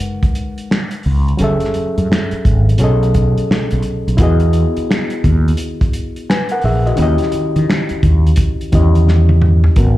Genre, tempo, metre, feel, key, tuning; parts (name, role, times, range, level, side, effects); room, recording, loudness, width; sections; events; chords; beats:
R&B, neo-soul; 86 BPM; 4/4; swing 64% on 16ths; A4 = 440 Hz
overdriven reed electric piano; accompaniment; 0.0-10.0 s; B2 to G#5; -19 LUFS; left 1 dB; slapback echo
warm soul drum kit; drums; 0.2-10.0 s; finger snaps, hi-hat, kick drum, snare drum, toms; -16 LUFS; equal
mellow fretless electric bass; bass; 1.1-10.0 s; F#1 to D#3; -12 LUFS; equal
little or no reverb; live gig heard through the venue's PA, club reverb; -12 LUFS; side -15 dB against mid
0.0-9.8 A section
drum fill 9.1-9.8
0.0 G#m9; 1.4 F#m9; 2.8 B13; 4.2 Emaj9; 7.0 D#7b9
0.00 0.70 | 1.39 2.09 2.79 3.49 | 4.18 4.88 5.58 6.28 | 6.98 7.67 8.37 9.07 | 9.77